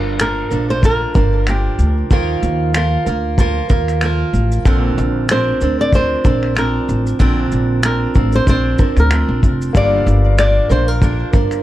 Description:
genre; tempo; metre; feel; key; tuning
acoustic pop; 94 BPM; 4/4; swing 55% on 16ths; Bb major; A4 = 442 Hz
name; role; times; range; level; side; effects
fingerpicked steel-string acoustic guitar; accompaniment; 0.0-11.6 s; G2 to Bb4; -20 LUFS; right 3 dB; none
upright bass; bass; 0.0-11.6 s; F1 to Eb2; -17 LUFS; equal; none
flamenco guitar; melody; 0.2-11.6 s; G4 to D5; -19 LUFS; left 1 dB; digital delay
cloth-damped thuddy drum kit; drums; 0.2-11.6 s; finger snaps, kick drum, shaker; -15 LUFS; equal; none
clear upright piano; accompaniment; 9.7-11.6 s; Bb3 to F5; -26 LUFS; left 4 dB; none
room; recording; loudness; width
little or no reverb; dark, warm production; -13 LUFS; side -14 dB against mid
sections
0.0-11.6 A section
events
none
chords
0.0 Gm7; 2.1 Ebsus2; 4.7 Bbadd9; 9.7 Gm7

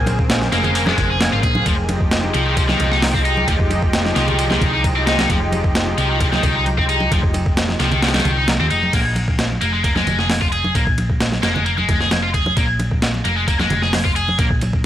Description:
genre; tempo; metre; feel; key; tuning
breakbeat, breaks; 132 BPM; 4/4; straight; Bb minor; A4 = 440 Hz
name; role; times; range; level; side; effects
lush unison pad; sustained chords; 0.0-8.9 s; Db3 to Ab4; -24 LUFS; equal; chorus, sidechain pumping
hollow-body short-scale fingered electric bass; bass; 0.0-14.9 s; F1 to Eb2; -21 LUFS; equal; none
breakbeat sampler-style drum kit; drums; 0.1-14.8 s; crash cymbal, hi-hat, kick drum, ride cymbal, snare drum; -20 LUFS; equal; none
congas; percussion; 0.1-14.7 s; none; -26 LUFS; right 1 dB; none
scooped high-gain guitar; riff; 0.5-14.4 s; Eb3 to Ab4; -20 LUFS; left 1 dB; distortion, tube saturation, analog delay
room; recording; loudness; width
digital ambience; dry, gritty hardware recording; -15 LUFS; side -11 dB against mid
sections
0.0-8.9 A section; 8.9-14.9 B section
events
drop 0.0-8.9; kick drops out 8.0-8.9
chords
0.0 Bbm9; 1.7 Fm9; 8.9 Bb5

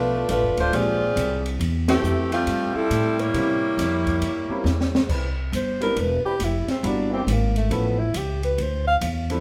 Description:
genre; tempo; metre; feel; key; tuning
jazz, big band swing; 138 BPM; 4/4; swing 65% on 8ths; C major from 5.1 s; A4 = 440 Hz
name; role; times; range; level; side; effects
warm saxophone section; melody; 0.0-4.9 s; E3 to D5; -25 LUFS; equal; none
clear concert grand piano; accompaniment; 0.0-9.4 s; F3 to A4; -32 LUFS; equal; none
upright bass; bass; 0.0-9.4 s; D1 to C3; -27 LUFS; equal; none
open jazz drum kit; drums; 0.3-9.4 s; crash cymbal, hi-hat, kick drum, ride cymbal, snare drum; -32 LUFS; equal; none
muted trombone section; sustained chords; 5.1-7.2 s; E3 to B4; -37 LUFS; equal; none
breathy alto saxophone; melody; 5.6-9.0 s; A3 to F5; -27 LUFS; equal; none
room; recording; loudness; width
moderate large studio reverb, RT60 1.3 s; band playing live in one room; -23 LUFS; mono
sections
0.0-5.1 A section; 5.1-9.4 B section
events
band accent 1.8; drum fill 4.7-5.1; alto saxophone solo 5.1-9.4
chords
0.0 Bm7b5; 0.7 Bb13; 1.6 Am7; 3.3 C7b9; 5.1 Cmaj9; 6.8 Em7b5; 7.7 A; 8.6 Dm9

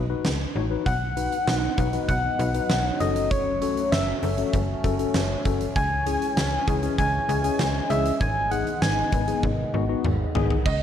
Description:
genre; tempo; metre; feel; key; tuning
synth-pop; 98 BPM; 4/4; straight; unclear; A4 = 440 Hz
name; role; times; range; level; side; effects
tine electric piano; accompaniment; 0.0-10.5 s; B3 to C#5; -29 LUFS; left 9 dB; none
slap-like FM bass; bass; 0.0-10.8 s; F#1 to C#2; -27 LUFS; right 1 dB; none
huge arena drum kit; drums; 0.2-10.8 s; crash cymbal, hi-hat, kick drum, snare drum, toms; -27 LUFS; right 1 dB; none
soft struck synth lead; melody; 0.9-9.4 s; C#5 to G#5; -27 LUFS; left 1 dB; chorus, slapback echo
sweeping resonant pad; sustained chords; 1.4-10.8 s; C#3 to B4; -31 LUFS; right 2 dB; chorus, phaser
bright concert grand piano; second line; 10.7-10.8 s; D#5; -26 LUFS; right 7 dB; slapback echo
room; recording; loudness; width
moderate lush hall reverb, RT60 1.6 s, small room ambience; dark, warm production; -22 LUFS; side -9 dB against mid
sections
0.9-10.7 A section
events
drum fill 9.4-10.7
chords
0.0 B; 3.0 F#m; 5.8 C#m; 8.2 G#m

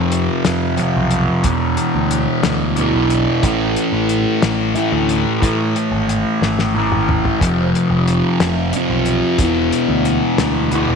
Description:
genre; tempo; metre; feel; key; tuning
psychedelic rock; 60 BPM (dotted quarters); 6/8; straight; E phrygian dominant; A4 = 440 Hz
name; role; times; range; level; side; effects
fuzz guitar; riff; 0.0-11.0 s; E2 to A3; -16 LUFS; equal; distortion, phaser
picked electric bass; bass; 0.0-11.0 s; E1 to A2; -21 LUFS; right 1 dB; none
cloth-damped thuddy drum kit; drums; 0.1-10.9 s; hi-hat, kick drum, snare drum, toms; -21 LUFS; left 3 dB; none
room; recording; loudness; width
moderate echo chamber reverb, RT60 1.7 s, small room reverb; 1960s-style stereo; -14 LUFS; side -5 dB against mid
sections
0.0-11.0 A section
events
drum fill 6.4-7.4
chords
0.0 F5; 1.5 E5; 3.4 A5; 7.4 F5; 9.4 E5

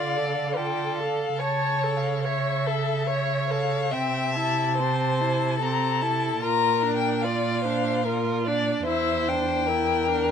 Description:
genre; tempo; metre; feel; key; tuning
classical, slow romantic movement for string quartet; 73 BPM; 3/4; rubato; unclear; A4 = 440 Hz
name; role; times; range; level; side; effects
dark violin; melody; 0.0-10.3 s; E5 to Bb5; -27 LUFS; left 8 dB; none
rich violin; second line; 0.0-10.3 s; A4 to E5; -28 LUFS; left 2 dB; none
rich viola; accompaniment; 0.0-10.3 s; C4 to C#5; -30 LUFS; right 3 dB; none
rich cello; bass; 0.0-10.3 s; E2 to D3; -29 LUFS; right 5 dB; none
room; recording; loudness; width
light reverb; minimal, uncompressed stereo recording; -22 LUFS; side -7 dB against mid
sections
0.0-10.3 A section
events
none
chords
0.0 Dm; 1.4 A/C#; 3.9 Am/C; 6.4 Bb; 8.9 Em7b5

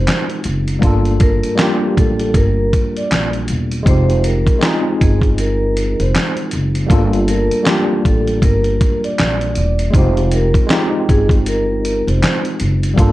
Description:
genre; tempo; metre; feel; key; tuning
lo-fi hip hop; 79 BPM; 4/4; swing 59% on 16ths; F dorian; A4 = 439 Hz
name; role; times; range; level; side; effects
vibraphone with medium mallets; melody; 0.0-12.4 s; G4 to D5; -21 LUFS; right 2 dB; low-pass filter
tine electric piano; accompaniment; 0.0-13.1 s; G3 to A4; -19 LUFS; left 1 dB; overdrive, fast stereo tremolo, cassette tape, low-pass filter
upright bass; bass; 0.0-13.1 s; E1 to Bb1; -17 LUFS; equal; none
dusty soul sampler-style drum kit; drums; 0.1-13.1 s; handclaps, hi-hat, kick drum, snare drum; -16 LUFS; equal; none
room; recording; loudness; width
light reverb; none; -13 LUFS; side -16 dB against mid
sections
0.0-13.1 A section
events
none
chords
0.0 Fm7; 0.8 Gm7; 3.9 Fm7; 6.9 Gm7; 9.9 Fm7

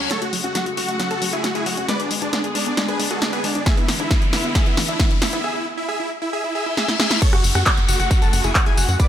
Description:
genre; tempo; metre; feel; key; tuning
uplifting trance; 135 BPM; 4/4; straight; F# minor; A4 = 440 Hz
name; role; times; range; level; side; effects
big supersaw lead; melody; 0.0-9.1 s; B3 to E5; -24 LUFS; equal; sidechain pumping, digital delay
rich studio string section; sustained chords; 0.0-9.1 s; C#3 to G#4; -30 LUFS; left 1 dB; sidechain pumping
analog pluck; arpeggios; 0.0-5.4 s; E3 to B4; -28 LUFS; left 2 dB; chorus, sidechain pumping, digital delay
tight sequencer bass; bass; 0.0-9.0 s; F#1 to G#2; -25 LUFS; equal; sidechain pumping, high-pass filter
reverse cymbal, riser and downlifter; sound effects; 0.0-9.1 s; none; -29 LUFS; left 2 dB; none
punchy analog drum machine; drums; 0.1-9.1 s; crash cymbal, handclaps, hi-hat, rim click, snare drum, tambourine; -23 LUFS; equal; none
electronic kick drum; drums; 3.7-9.1 s; none; -18 LUFS; equal; none
analog pluck; second line; 7.2-9.1 s; F#5 to D6; -28 LUFS; left 6 dB; chorus, sidechain pumping
room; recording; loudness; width
light reverb; none; -17 LUFS; side -10 dB against mid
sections
0.1-7.2 A section; 7.2-9.1 B section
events
build-up 0.1-7.2; drum fill 0.1-5.4, 6.8-7.2; riser 0.1-5.4; filter sweep on synth pluck 0.1-7.2; break 5.4-7.2; reverse cymbal 6.5-7.2; drop 7.2-9.1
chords
0.1 F#madd9; 1.9 G#dim; 3.7 E7/G#; 5.4 E; 7.2 F#madd9

